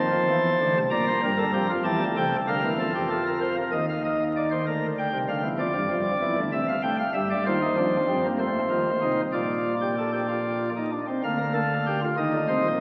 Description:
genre	classical, baroque-style 3-part fugue for pipe organ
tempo	64 BPM (dotted quarters)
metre	6/8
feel	straight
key	Bb major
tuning	A4 = 440 Hz
part	pipe organ, sparkling flutes	solo	0.0-12.8 s	Bb1 to Bb5	-25 LUFS	equal	none
room	wet church reverb, RT60 3.6 s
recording	very old 78 rpm record, vinyl crackle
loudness	-25 LUFS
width	mono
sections	0.0-3.7 A section; 3.7-11.2 B section; 11.2-12.8 A section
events	none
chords	0.0 F; 0.9 Bb; 1.8 C7; 2.8 F; 3.7 F5/Eb; 4.7 Bb/D; 5.6 G5/F; 6.5 C; 7.5 Cm7/Eb; 8.4 F7; 9.3 Bb; 11.2 Bb/D; 12.2 Eb5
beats	0.91 | 1.85 2.79 | 3.73 4.67 | 5.60 6.54 | 7.46 8.39 | 9.34 10.29 | 11.24 12.18

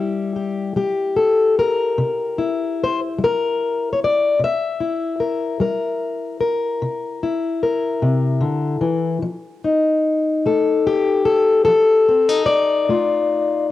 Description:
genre	acoustic country blues, solo or duo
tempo	49 BPM (dotted quarters)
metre	12/8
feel	straight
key	C mixolydian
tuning	A4 = 439 Hz
part	fingerpicked plugged-in steel-string acoustic guitar	solo	0.0-13.7 s	C3 to E5	-17 LUFS	left 3 dB	cassette tape
room	light reverb, small room ambience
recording	home recording on cassette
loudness	-17 LUFS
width	side -14 dB against mid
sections	0.0-13.7 A section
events	none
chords	0.0 C7; 9.2 F7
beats	0.75 1.96 3.17 | 4.39 5.60 6.82 8.03 | 9.24 10.46 11.68 12.89

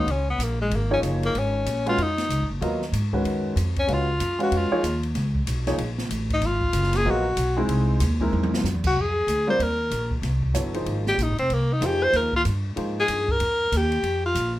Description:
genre	modal jazz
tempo	189 BPM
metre	4/4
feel	swing 63% on 8ths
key	G# dorian, F dorian from 9.0 s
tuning	A4 = 440 Hz
part	clear tenor saxophone	melody	0.0-14.5 s	G#3 to C5	-23 LUFS	left 1 dB	none
part	warm baby grand piano	accompaniment	0.0-13.2 s	D#3 to E#5	-27 LUFS	equal	none
part	upright bass	bass	0.0-14.6 s	F1 to G#2	-25 LUFS	equal	none
part	open jazz drum kit	drums	0.1-14.4 s	crash cymbal, hi-hat, kick drum, ride cymbal, snare drum, toms	-32 LUFS	equal	none
room	moderate club reverb, RT60 0.5 s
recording	none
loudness	-21 LUFS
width	side -15 dB against mid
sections	0.0-9.0 A section; 9.0-14.6 A section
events	tenor saxophone solo 0.0-14.6; drum fill 8.3-8.6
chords	0.0 G#13sus4; 7.7 C7alt; 9.0 Fm11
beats	| 0.08 0.39 0.71 1.03 | 1.35 1.66 1.98 2.30 | 2.61 2.93 3.25 3.56 | 3.88 4.20 4.52 4.83 | 5.15 5.47 5.79 6.10 | 6.42 6.74 7.05 7.37 | 7.69 8.01 8.32 8.64 | 8.96 9.28 9.59 9.91 | 10.23 10.54 10.86 11.18 | 11.50 11.82 12.13 12.45 | 12.77 13.09 13.40 13.72 | 14.04 14.36

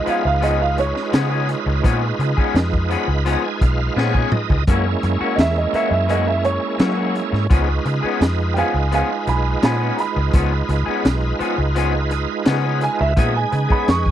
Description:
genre	straight-eighth soul blues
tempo	85 BPM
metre	4/4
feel	straight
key	Db mixolydian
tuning	A4 = 440 Hz
part	dark upright piano	second line	0.0-14.1 s	Db5 to Db6	-23 LUFS	right 4 dB	none
part	bright tonewheel organ	accompaniment	0.0-14.1 s	Ab3 to Cb6	-23 LUFS	right 4 dB	slow rotary speaker, overdrive, chorus vibrato
part	electric guitar through a small old amp	stabs	0.1-13.9 s	Fb3 to Ab4	-24 LUFS	left 8 dB	none
part	vintage muted fingered electric bass	bass	0.1-14.1 s	Cb2 to Gb3	-20 LUFS	equal	none
part	crunchy breakbeat drum kit	drums	0.1-14.1 s	hi-hat, kick drum, snare drum, toms	-18 LUFS	equal	none
room	little or no reverb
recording	dry, close 1970s-style studio recording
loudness	-16 LUFS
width	side -11 dB against mid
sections	0.0-14.1 A section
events	upright piano solo 0.0-14.1; tonewheel organ fill 2.6-4.7; drum fill 4.0-4.7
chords	0.0 Db7; 4.7 Gb7; 7.5 Db7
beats	0.43 1.14 | 1.84 2.55 3.26 3.97 | 4.68 5.39 6.10 6.80 | 7.51 8.22 8.93 9.64 | 10.35 11.05 11.76 12.47 | 13.18 13.88

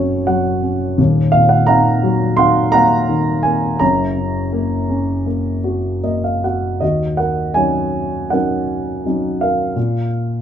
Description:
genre	classical, lyrical solo piano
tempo	74-88 BPM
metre	4/4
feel	rubato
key	Eb minor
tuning	A4 = 439 Hz
part	dark concert grand piano	solo	0.0-10.4 s	Eb1 to C6	-14 LUFS	equal	none
room	light reverb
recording	none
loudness	-14 LUFS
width	side -9 dB against mid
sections	0.0-6.8 A section; 6.8-10.4 B section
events	grand piano fill 0.0-1.0, 5.6-6.8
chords	0.0 Gb; 1.0 Ebmadd9; 3.8 Gb; 6.8 Ebm7; 9.8 Bb5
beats	0.27 | 0.98 1.68 2.38 3.09 | 3.81 4.53 5.25 6.04 | 6.82 7.56 8.32 9.06 | 9.76

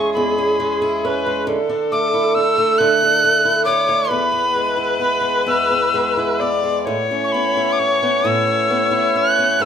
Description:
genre	celtic folk, Celtic slow air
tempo	44 BPM (dotted quarters)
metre	6/8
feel	uneven beats, rubato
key	A major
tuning	A4 = 445 Hz
part	breathy tin whistle	melody	0.0-9.7 s	B5 to F#6	-18 LUFS	right 1 dB	none
part	warm viola	second line	0.0-9.7 s	G#4 to D5	-19 LUFS	left 2 dB	none
part	picked swing-style acoustic guitar	accompaniment	0.0-9.7 s	E2 to E4	-22 LUFS	right 2 dB	none
room	moderate recital hall reverb, RT60 1.5 s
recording	minimal, uncompressed stereo recording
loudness	-15 LUFS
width	side -8 dB against mid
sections	0.0-9.7 A section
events	none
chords	0.0 E6; 1.5 Dadd9; 4.1 E; 6.9 Aadd9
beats	0.14 | 1.48 2.79 | 4.10 5.46 | 6.87 8.25 | 9.61

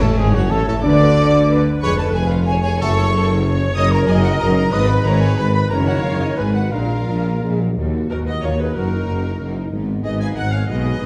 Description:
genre	classical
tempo	184 BPM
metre	3/4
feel	rubato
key	F# minor, Eb minor from 3.8 s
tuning	A4 = 441 Hz
part	warm symphonic violin section	melody	0.0-11.1 s	Ab3 to Eb6	-34 LUFS	equal	none
part	hollow concert flute	second line	0.0-11.1 s	Gb4 to Eb6	-30 LUFS	equal	none
part	rich symphonic violin section	second line	0.0-11.1 s	Eb4 to Eb5	-31 LUFS	equal	none
part	dark French horn section	sustained chords	0.0-11.1 s	Eb3 to G#4	-26 LUFS	equal	none
part	clear trumpet	stabs	0.0-7.6 s	F#4 to D5	-28 LUFS	equal	none
part	clear symphonic cello section	bass	0.0-11.1 s	Eb2 to D3	-24 LUFS	equal	none
part	clear symphonic double bass section	bass	0.0-11.1 s	E#1 to Eb2	-24 LUFS	equal	none
part	mellow tuba	bass	0.0-11.1 s	E#1 to Eb2	-25 LUFS	equal	none
part	clear symphonic viola section	accompaniment	0.2-11.1 s	A4 to Ab5	-28 LUFS	equal	none
room	moderate recital hall reverb, RT60 1.5 s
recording	dark, warm production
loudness	-17 LUFS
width	mono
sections	0.0-7.8 A section; 7.8-11.1 B section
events	none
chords	0.0 F#m; 0.8 Bm/D; 1.8 C#7/E#; 2.8 F#m; 3.8 Ebm/Gb; 4.7 Abm; 5.7 Ebm/Gb; 6.4 Abm; 6.7 Bb; 7.8 Ebm; 8.8 Ebm/Gb; 9.7 Abm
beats	0.17 0.50 | 0.84 1.17 1.50 | 1.82 2.15 2.47 | 2.81 3.13 3.45 | 3.76 4.08 4.40 | 4.72 5.05 5.38 | 5.71 6.04 6.37 | 6.72 7.08 7.43 | 7.78 8.11 8.43 | 8.76 9.09 9.41 | 9.73 10.05 10.37 | 10.69 11.01

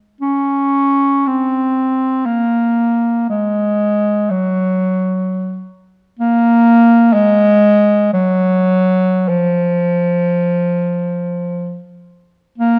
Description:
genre	classical, free, expressive piece for unaccompanied bass clarinet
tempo	free time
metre	none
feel	none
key	unclear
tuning	A4 = 440 Hz
part	warm bass clarinet	solo	0.2-12.8 s	F3 to Db4	-14 LUFS	equal	none
room	light reverb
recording	close, detailed microphones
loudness	-15 LUFS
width	mono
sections	0.0-12.8 A section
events	none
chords	none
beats	free time

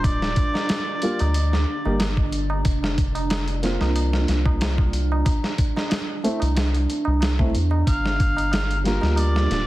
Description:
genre	trip hop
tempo	92 BPM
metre	4/4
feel	swing 53% on 16ths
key	G dorian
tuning	A4 = 441 Hz
part	mellow harmonica	melody	0.0-2.0, 7.9-9.7 s	Bb4 to F5	-28 LUFS	equal	tape echo
part	felt-muted upright piano	accompaniment	0.0-9.7 s	G3 to G4	-28 LUFS	equal	harmonic tremolo, tape echo
part	deep dark ambient pad	sustained chords	0.0-9.7 s	D4	-30 LUFS	right 2 dB	chorus, built-in reverb
part	soft dub sub bass	bass	0.0-9.7 s	D1 to E2	-22 LUFS	equal	none
part	dusty soul sampler-style drum kit	drums	0.0-9.7 s	hi-hat, kick drum, snare drum	-24 LUFS	equal	none
part	tabla	percussion	0.0-9.5 s	none	-34 LUFS	right 2 dB	none
room	little or no reverb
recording	dense, heavily limited modern master, vinyl crackle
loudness	-19 LUFS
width	side -17 dB against mid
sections	0.0-9.7 A section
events	none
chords	0.0 Gm7; 2.7 Fsus4; 5.3 C; 7.9 Gm7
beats	| 0.04 0.69 1.35 2.00 | 2.65 3.30 3.96 4.61 | 5.26 5.91 6.57 7.22 | 7.87 8.52 9.17

